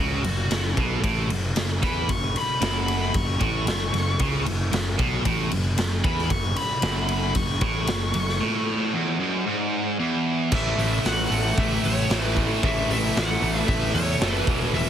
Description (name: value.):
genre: hard rock.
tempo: 114 BPM.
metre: 4/4.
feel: straight.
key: F# minor.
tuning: A4 = 439 Hz.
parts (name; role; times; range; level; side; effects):
high-gain lead guitar; melody; 0.0-14.9 s; F#4 to C#6; -29 LUFS; left 2 dB; distortion, digital delay.
distorted electric guitar; riff; 0.0-14.9 s; E2 to A3; -26 LUFS; right 1 dB; overdrive.
fuzz picked electric bass; bass; 0.0-14.9 s; E1 to E2; -27 LUFS; equal; overdrive.
raw garage drum kit; drums; 0.2-14.9 s; crash cymbal, hi-hat, kick drum, ride cymbal, snare drum; -26 LUFS; equal; none.
room: small room ambience.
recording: heavily compressed radio sound, multiband compression.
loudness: -21 LUFS.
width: side -10 dB against mid.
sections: 0.0-10.5 A section; 10.5-14.9 B section.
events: lead electric guitar solo 0.0-10.5.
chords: 0.0 F#m; 10.5 A.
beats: 0.51 1.03 1.56 | 2.09 2.61 3.14 3.67 | 4.20 4.72 5.25 5.78 | 6.30 6.83 7.36 7.88 | 8.41 8.94 9.47 9.99 | 10.52 11.05 11.57 12.10 | 12.63 13.16 13.68 14.21 | 14.74.